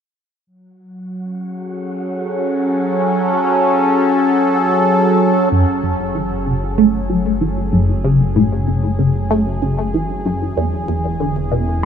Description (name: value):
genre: ambient, sequencer-driven space music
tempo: 95 BPM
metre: 4/4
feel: straight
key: F# minor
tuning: A4 = 437 Hz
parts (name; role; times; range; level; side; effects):
- sweeping resonant pad; sustained chords; 0.5-11.8 s; E3 to A4; -17 LUFS; equal; chorus, phaser
- wind-like tuned noise texture; texture; 1.4-5.5 s; F#4 to F#5; -31 LUFS; right 1 dB; built-in reverb
- resonant blip pluck; riff; 5.5-11.7 s; E2 to A3; -16 LUFS; equal; phaser, wide subtle chorus, ping-pong delay
- fat analog bass; bass; 5.5-11.8 s; E1 to F#1; -23 LUFS; equal; none
room: wet huge ambient reverb, RT60 9.0 s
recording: none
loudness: -14 LUFS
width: side -8 dB against mid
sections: 0.5-5.5 A section; 5.5-11.8 B section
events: fade-in on synth texture 0.5-5.5; fade-in on analog synth pad 5.5-11.8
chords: 0.5 F#m; 5.5 F#m7; 10.6 E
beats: | 0.47 1.10 1.73 2.36 | 2.99 3.62 4.26 4.89 | 5.52 6.15 6.78 7.41 | 8.05 8.68 9.31 9.94 | 10.57 11.20 11.84